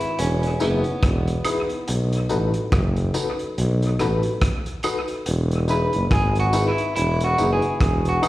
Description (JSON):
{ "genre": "roots reggae", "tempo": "71 BPM", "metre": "4/4", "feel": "swing 58% on 16ths", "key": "E major", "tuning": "A4 = 440 Hz", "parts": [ { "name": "clean electric guitar", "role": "accompaniment", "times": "0.0-8.3 s", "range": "B3 to B4", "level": "-25 LUFS", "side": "right 1 dB", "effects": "harmonic tremolo, tape echo, slapback echo" }, { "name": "crunchy breakbeat drum kit", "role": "drums", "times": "0.0-8.3 s", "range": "hi-hat, kick drum, rim click", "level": "-25 LUFS", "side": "equal", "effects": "dub echo" }, { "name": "warm tuba", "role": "bass", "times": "0.2-8.2 s", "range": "E1 to B1", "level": "-21 LUFS", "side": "equal", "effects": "none" }, { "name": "reed electric piano", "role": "stabs", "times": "0.4-8.3 s", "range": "D#4 to B4", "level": "-24 LUFS", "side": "left 3 dB", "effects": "fast tremolo, slapback echo" }, { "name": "tambourine and woodblock", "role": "percussion", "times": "0.6-8.3 s", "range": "none", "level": "-30 LUFS", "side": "right 4 dB", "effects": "none" } ], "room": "light reverb", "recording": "live gig heard through the venue's PA, recital hall reverb", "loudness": "-19 LUFS", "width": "side -16 dB against mid", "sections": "0.0-8.3 A section", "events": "clean electric guitar solo 0.0-8.3", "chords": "0.0 Emaj7; 1.9 B7; 5.3 Emaj7" }